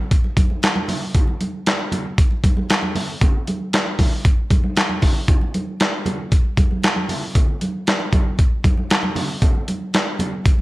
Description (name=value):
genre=funk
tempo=116 BPM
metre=4/4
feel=straight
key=none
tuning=none
part: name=dusty soul sampler-style drum kit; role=drums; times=0.1-10.6 s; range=handclaps, hi-hat, kick drum, snare drum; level=-17 LUFS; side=equal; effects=gated reverb
part: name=congas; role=percussion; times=0.2-10.6 s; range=none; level=-25 LUFS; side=right 1 dB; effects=none
room=light reverb, digital ambience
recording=none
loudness=-17 LUFS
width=side -19 dB against mid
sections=0.0-10.6 A section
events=none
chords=none